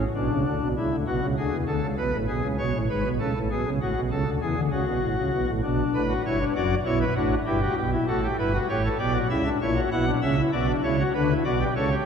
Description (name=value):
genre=classical, baroque-style 3-part fugue for pipe organ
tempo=66 BPM (dotted quarters)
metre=12/8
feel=straight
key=B minor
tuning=A4 = 440 Hz
part: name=pipe organ, cornet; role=solo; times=0.0-12.0 s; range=F#1 to F#5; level=-22 LUFS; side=equal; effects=none
room=wet church reverb, RT60 3.5 s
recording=dark, warm production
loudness=-22 LUFS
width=side -7 dB against mid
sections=0.0-12.1 A section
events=none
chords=0.2 Bm; 2.0 C#5; 3.8 F#m/A; 5.6 Bm; 7.5 Em/G; 9.3 F#7; 11.1 Bm